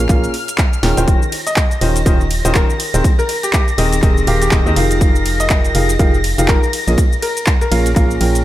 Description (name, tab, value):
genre	piano house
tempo	122 BPM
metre	4/4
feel	swing 58% on 16ths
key	Eb mixolydian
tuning	A4 = 439 Hz
part	bright grand piano	melody	0.0-8.1 s	G4 to Eb5	-24 LUFS	left 2 dB	diffuse ambient delay
part	dark studio violin section	sustained chords	0.0-8.4 s	F6 to Bb6	-24 LUFS	left 1 dB	sidechain pumping
part	organ-like FM bass	bass	0.0-8.4 s	Eb1 to Eb2	-17 LUFS	equal	sidechain pumping
part	clear baby grand piano	riff	0.1-8.4 s	Bb2 to G5	-19 LUFS	equal	sidechain pumping, diffuse ambient delay
part	electronic kick drum	drums	0.1-8.1 s	none	-14 LUFS	equal	overdrive
part	punchy analog drum machine	drums	0.1-8.4 s	handclaps, hi-hat, ride cymbal, shaker, snare drum	-22 LUFS	equal	none
room	light reverb, digital ambience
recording	none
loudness	-12 LUFS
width	side -14 dB against mid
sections	0.0-8.4 A section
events	drum fill 0.8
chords	0.0 Bbm7; 1.1 Eb13; 2.8 Abmaj9/Eb; 5.0 Fm11; 6.7 Bbm7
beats	0.09 0.58 | 1.08 1.57 2.06 2.55 | 3.04 3.54 4.03 4.52 | 5.01 5.50 6.00 6.49 | 6.98 7.47 7.96